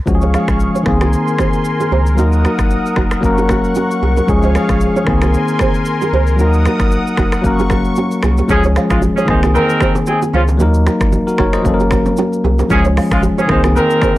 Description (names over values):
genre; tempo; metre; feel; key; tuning
afrobeats; 114 BPM; 4/4; swing 55% on 16ths; Db major; A4 = 439 Hz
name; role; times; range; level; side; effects
barky tine electric piano; accompaniment; 0.1-14.2 s; Eb3 to Eb5; -16 LUFS; left 1 dB; none
warm analog pad; sustained chords; 0.1-8.5 s; Ab4 to Eb6; -21 LUFS; left 2 dB; chorus, tremolo
warm sub bass; bass; 0.1-13.8 s; Gb1 to Eb2; -16 LUFS; equal; none
afro-pop drum kit; drums; 0.1-14.2 s; finger snaps, hi-hat, kick drum, rim click, shaker; -18 LUFS; equal; none
nylon-string guitar; riff; 0.2-14.1 s; Db4 to F5; -21 LUFS; right 6 dB; tape echo
clear horn section; second line; 8.5-14.1 s; Db3 to C5; -16 LUFS; right 1 dB; none
congas and bongos; percussion; 8.5-14.2 s; none; -25 LUFS; right 2 dB; none
room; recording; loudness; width
little or no reverb; dry, gritty hardware recording, transformer saturation; -12 LUFS; side -16 dB against mid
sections
0.0-8.5 A section; 8.5-14.2 B section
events
none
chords
0.1 Db; 0.9 Abadd9/C; 2.2 Ebm; 3.2 Gb; 4.3 Db; 5.1 Abadd9/C; 6.4 Ebm; 7.4 Gb; 8.5 Db; 9.3 Abadd9/C; 10.6 Ebm; 11.7 Gb; 12.7 Db; 13.5 Abadd9/C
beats
| 0.07 0.60 1.13 1.65 | 2.18 2.71 3.23 3.76 | 4.29 4.81 5.34 5.86 | 6.39 6.92 7.44 7.97 | 8.50 9.02 9.55 10.07 | 10.60 11.13 11.65 12.18 | 12.71 13.23 13.76